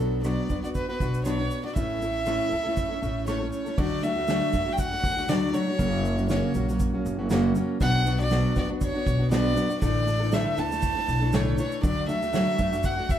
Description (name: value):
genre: acoustic pop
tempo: 119 BPM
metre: 4/4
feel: swing 55% on 16ths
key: D major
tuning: A4 = 443 Hz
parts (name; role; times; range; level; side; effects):
- warm violin; melody; 0.0-13.2 s; A4 to A5; -29 LUFS; right 1 dB; plate reverb
- fingerpicked plugged-in steel-string acoustic guitar; accompaniment; 0.0-13.2 s; F#2 to A4; -27 LUFS; equal; none
- upright bass; bass; 0.0-13.2 s; F#1 to F#2; -29 LUFS; equal; none
- unplugged drum kit; drums; 0.2-13.2 s; crash cymbal, kick drum, rim click, shaker, snare drum; -30 LUFS; right 1 dB; none
room: wet studio reverb, RT60 0.5 s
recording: heard from further back in the room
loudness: -23 LUFS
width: side -10 dB against mid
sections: 0.0-3.8 A section; 3.8-13.2 B section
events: none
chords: 0.0 Bm; 1.8 A; 3.8 D; 5.8 F#; 7.8 Bm; 9.8 Asus4; 11.8 D